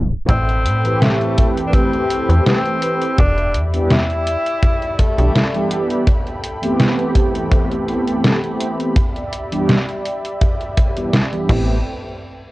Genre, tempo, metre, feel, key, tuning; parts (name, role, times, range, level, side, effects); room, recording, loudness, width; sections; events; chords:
vaporwave; 83 BPM; 4/4; swing 54% on 16ths; A minor; A4 = 440 Hz
warm tenor saxophone; melody; 0.0-6.1 s; A3 to E4; -22 LUFS; left 1 dB; tape echo
mellow synth brass; accompaniment; 0.0-11.8 s; C3 to B4; -20 LUFS; equal; wide subtle chorus, cassette tape, tape echo
lush unison pad; sustained chords; 0.0-11.8 s; C4 to C6; -28 LUFS; equal; chorus, vintage 12-bit sampler grit
slap-like FM bass; bass; 0.0-5.3, 11.5-11.8 s; D1 to A2; -18 LUFS; equal
detuned 8-bit digital drum machine; drums; 0.1-11.6 s; crash cymbal, hi-hat, snare drum; -18 LUFS; equal; vintage 12-bit sampler grit
kick drum; drums; 0.3-11.6 s; -19 LUFS; equal; vintage 12-bit sampler grit
light reverb; worn, warbling old tape, cassette tape, warbly pitch drift, tape stop; -15 LUFS; side -19 dB against mid
0.3-11.9 A section
tape stop 0.0
0.3 Am9; 3.2 Em7; 6.1 Am9; 9.0 Em7; 11.5 Am9; 11.9 N.C.